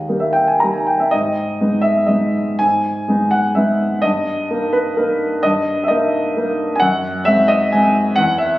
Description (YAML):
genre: classical, piano waltz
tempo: 109-139 BPM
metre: 3/4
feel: rubato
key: G# minor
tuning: A4 = 441 Hz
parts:
  - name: warm grand piano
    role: solo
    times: 0.0-8.6 s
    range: D#2 to A#5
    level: -14 LUFS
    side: equal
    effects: none
room: moderate scoring stage reverb, RT60 1.7 s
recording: recorded on a phone in the room, club reverb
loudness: -14 LUFS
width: side -16 dB against mid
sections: 0.0-8.6 A section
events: none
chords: 0.0 D#; 1.1 G#m; 4.0 D#/G; 6.8 G#7/F#